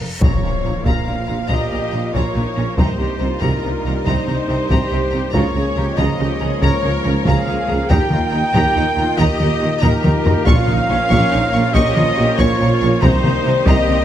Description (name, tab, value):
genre	cinematic, epic orchestral film score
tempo	94 BPM (dotted quarters)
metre	12/8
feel	straight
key	Bb dorian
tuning	A4 = 440 Hz
part	rich studio violin section	melody	0.0-14.0 s	F5 to Db6	-28 LUFS	left 2 dB	none
part	warm symphonic violin section	second line	0.0-14.0 s	Bb4 to G5	-26 LUFS	left 5 dB	none
part	clear symphonic viola section	accompaniment	0.0-14.0 s	Db4 to Bb4	-26 LUFS	equal	none
part	clear symphonic double bass section	bass	0.0-14.0 s	F1 to Eb2	-23 LUFS	right 2 dB	none
part	rich symphonic cello section	bass	0.0-14.0 s	F2 to Eb3	-24 LUFS	right 2 dB	none
part	reverse cymbal and impact	sound effects	0.0-2.8 s	none	-26 LUFS	left 1 dB	none
part	dark trombone section	sustained chords	0.2-14.0 s	G2 to G3	-28 LUFS	right 3 dB	none
part	mellow French horn section	sustained chords	0.2-14.0 s	Bb3 to F4	-27 LUFS	left 2 dB	none
part	rich symphonic string section	sustained chords	0.2-14.0 s	G3 to F5	-29 LUFS	left 1 dB	none
part	dark trumpet	stabs	0.2-14.0 s	Bb4 to G5	-23 LUFS	right 1 dB	none
part	mellow tuba	bass	0.2-14.0 s	Bb1 to Eb2	-25 LUFS	right 3 dB	none
part	taiko ensemble	drums	0.2-14.0 s	none	-19 LUFS	left 1 dB	none
room	light reverb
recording	close, detailed microphones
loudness	-14 LUFS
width	side -11 dB against mid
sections	0.2-14.0 A section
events	reverse cymbal 0.0; impact 0.2-2.8; drum fill 9.8-10.5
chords	0.2 Bbm; 2.8 Cm7; 5.3 Db6; 7.9 Eb; 10.5 Bbm; 13.0 Cm7